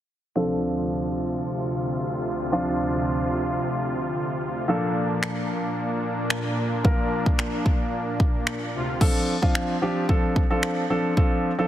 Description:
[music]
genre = dance-pop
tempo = 111 BPM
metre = 4/4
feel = straight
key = D minor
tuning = A4 = 440 Hz
[part]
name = warm concert grand piano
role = accompaniment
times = 0.4-11.7 s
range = F3 to Bb4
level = -26 LUFS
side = equal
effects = sidechain pumping, low-pass filter
[part]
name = soft supersaw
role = sustained chords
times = 0.4-9.0 s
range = D2 to F4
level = -27 LUFS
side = equal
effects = sidechain pumping, low-pass filter
[part]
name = pop drum kit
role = drums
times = 5.2-11.3 s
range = crash cymbal, finger snaps, kick drum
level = -23 LUFS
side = equal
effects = none
[sound]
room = light reverb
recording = heavily compressed radio sound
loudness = -22 LUFS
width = side -12 dB against mid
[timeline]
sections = 0.4-9.0 A section; 9.0-11.7 B section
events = filter sweep 0.4-9.0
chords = 0.4 Dm7; 4.7 Bbmaj7; 8.7 Dm7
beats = | 0.36 0.90 1.44 1.98 | 2.52 3.06 3.60 4.14 | 4.68 5.23 5.77 6.31 | 6.85 7.39 7.93 8.47 | 9.01 9.55 10.09 10.63 | 11.17

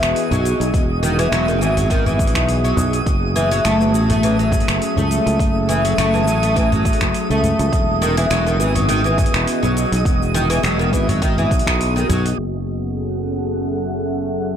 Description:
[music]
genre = organic downtempo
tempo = 103 BPM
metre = 4/4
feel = swing 54% on 16ths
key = F# dorian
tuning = A4 = 440 Hz
[part]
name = airy breathy pad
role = sustained chords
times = 0.0-14.6 s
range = F#3 to E5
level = -24 LUFS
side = equal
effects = chorus, sidechain pumping
[part]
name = oud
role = arpeggios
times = 0.0-12.2 s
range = D#3 to A3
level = -20 LUFS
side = left 1 dB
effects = tape echo
[part]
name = sustaining fretless electric bass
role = bass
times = 0.0-14.6 s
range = E1 to C#2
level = -20 LUFS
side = equal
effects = tube saturation, sidechain pumping
[part]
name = deep house drum kit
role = drums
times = 0.0-12.4 s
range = finger snaps, hi-hat, shaker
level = -26 LUFS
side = equal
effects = overdrive, low-pass filter on hats, low-pass filter on perc, soft clipping on snare, low-pass filter on snare, low-pass filter on room
[part]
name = twinkling granular texture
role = texture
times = 0.0-14.6 s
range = F#5 to D#6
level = -27 LUFS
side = right 4 dB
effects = built-in reverb
[part]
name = udu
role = percussion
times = 0.3-12.2 s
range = none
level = -24 LUFS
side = left 1 dB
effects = none
[part]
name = electronic kick drum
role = drums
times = 0.7-11.8 s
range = none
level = -20 LUFS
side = equal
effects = overdrive
[sound]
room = light reverb, digital ambience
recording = blown-out, overdriven recording, overdrive, low-pass filter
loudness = -15 LUFS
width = side -9 dB against mid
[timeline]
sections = 0.0-12.4 A section; 12.4-14.6 B section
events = filter sweep 12.4-14.6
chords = 0.0 Emaj9; 3.1 F#m7; 7.7 Emaj9; 12.4 F#m7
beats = 0.16 | 0.74 1.32 1.90 2.49 | 3.07 3.65 4.23 4.82 | 5.40 5.98 6.56 7.15 | 7.73 8.31 8.89 9.48 | 10.06 10.64 11.22 11.81 | 12.39 12.97 13.55 14.14

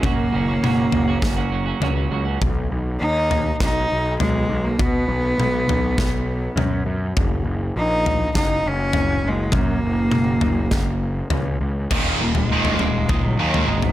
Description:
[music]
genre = quiet-loud alternative rock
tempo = 101 BPM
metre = 4/4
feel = straight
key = unclear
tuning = A4 = 440 Hz
[part]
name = rich cello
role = melody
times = 0.0-13.9 s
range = Gb3 to D#4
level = -23 LUFS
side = equal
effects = none
[part]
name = twelve-string electric guitar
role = arpeggios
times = 0.0-2.4, 11.9-13.9 s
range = Eb2 to Gb4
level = -27 LUFS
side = right 7 dB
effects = none
[part]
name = fuzz picked electric bass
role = bass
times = 0.0-13.9 s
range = Eb1 to B2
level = -23 LUFS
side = equal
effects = overdrive
[part]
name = big rock drum kit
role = drums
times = 0.0-13.9 s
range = crash cymbal, kick drum, snare drum, toms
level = -23 LUFS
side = left 1 dB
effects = none
[part]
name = heavy high-gain guitar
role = riff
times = 11.9-13.9 s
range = Eb2 to Eb3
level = -21 LUFS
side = equal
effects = distortion
[sound]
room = studio ambience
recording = none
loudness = -18 LUFS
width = side -14 dB against mid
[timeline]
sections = 0.0-11.9 A section; 11.9-13.9 B section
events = half time 0.0-11.9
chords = 0.0 Gb; 2.4 B; 7.2 Gb; 11.9 Eb5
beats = | 0.03 0.62 1.22 1.82 | 2.41 3.01 3.60 4.20 | 4.79 5.39 5.98 6.58 | 7.17 7.76 8.36 8.95 | 9.54 10.13 10.73 11.32 | 11.91 12.51 13.10 13.69

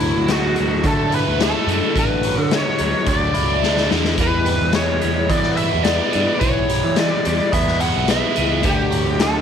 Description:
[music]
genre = psychedelic rock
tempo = 108 BPM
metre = 4/4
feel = straight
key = E dorian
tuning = A4 = 441 Hz
[part]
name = fuzz lead guitar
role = melody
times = 0.0-9.4 s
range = E4 to F#5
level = -22 LUFS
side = equal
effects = wah, distortion, slapback echo
[part]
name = biting overdriven guitar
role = riff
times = 0.0-9.4 s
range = D3 to E4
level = -21 LUFS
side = right 1 dB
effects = phaser
[part]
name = modern bright picked electric bass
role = bass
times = 0.0-9.4 s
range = A1 to E3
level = -22 LUFS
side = right 1 dB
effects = none
[part]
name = raw garage drum kit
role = drums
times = 0.0-9.3 s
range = hi-hat, kick drum, snare drum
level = -22 LUFS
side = left 3 dB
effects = none
[sound]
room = light reverb, studio ambience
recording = 1960s-style stereo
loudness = -16 LUFS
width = side -8 dB against mid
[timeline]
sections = 0.0-9.4 A section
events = drum fill 3.6-4.2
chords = 0.0 Dadd9; 4.2 Em; 8.6 D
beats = 0.29 0.85 1.41 | 1.96 2.52 3.08 3.63 | 4.19 4.75 5.30 5.86 | 6.42 6.97 7.53 8.09 | 8.64 9.20

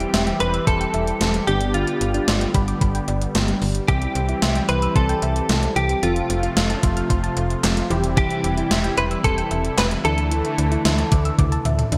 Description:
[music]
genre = synth-pop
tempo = 112 BPM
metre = 4/4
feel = straight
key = unclear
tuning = A4 = 440 Hz
[part]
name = direct-recorded clean electric guitar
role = melody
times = 0.0-11.9 s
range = F4 to B4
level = -27 LUFS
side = equal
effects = analog chorus, digital delay
[part]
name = warm analog keys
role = accompaniment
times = 0.0-12.0 s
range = B3 to A4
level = -33 LUFS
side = equal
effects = chorus
[part]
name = brassy analog pad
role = sustained chords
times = 0.0-12.0 s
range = C3 to G4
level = -29 LUFS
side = equal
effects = chorus
[part]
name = soft round pluck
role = arpeggios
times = 0.0-12.0 s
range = D3 to F6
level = -32 LUFS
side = equal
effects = chorus, digital delay
[part]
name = slap-like FM bass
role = bass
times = 0.0-12.0 s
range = E1 to D2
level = -26 LUFS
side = equal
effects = none
[part]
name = gated 80s digital drum machine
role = drums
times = 0.0-12.0 s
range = handclaps, hi-hat, kick drum, snare drum, toms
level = -24 LUFS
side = equal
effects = gated reverb, gated reverb snare, overdrive
[sound]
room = moderate lush hall reverb, RT60 2.4 s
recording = bright 1980s-style digital production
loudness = -20 LUFS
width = mono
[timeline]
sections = 0.0-12.0 A section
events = drum fill 11.4-12.0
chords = 0.0 C/E; 1.5 G; 3.9 C; 6.0 F; 7.9 C/E; 10.0 Dsus2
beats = 0.14 0.67 1.21 | 1.74 2.28 2.81 3.35 | 3.89 4.42 4.96 5.49 | 6.03 6.57 7.10 7.64 | 8.17 8.71 9.24 9.78 | 10.31 10.85 11.39 11.92

